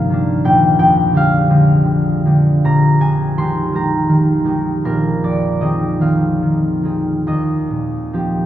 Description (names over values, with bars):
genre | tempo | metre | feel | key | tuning
classical, solo harp piece | 46-58 BPM (dotted quarters) | 6/8 | rubato | unclear | A4 = 439 Hz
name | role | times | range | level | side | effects
concert harp | solo | 0.0-8.5 s | Bb1 to C6 | -13 LUFS | equal | none
room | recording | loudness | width
wet cathedral reverb, RT60 4.8 s | none | -13 LUFS | side -12 dB against mid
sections
0.0-8.5 A section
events
none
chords
0.5 Bb13; 2.6 Fm11/Bb; 4.8 Bb9sus4; 7.2 Eb69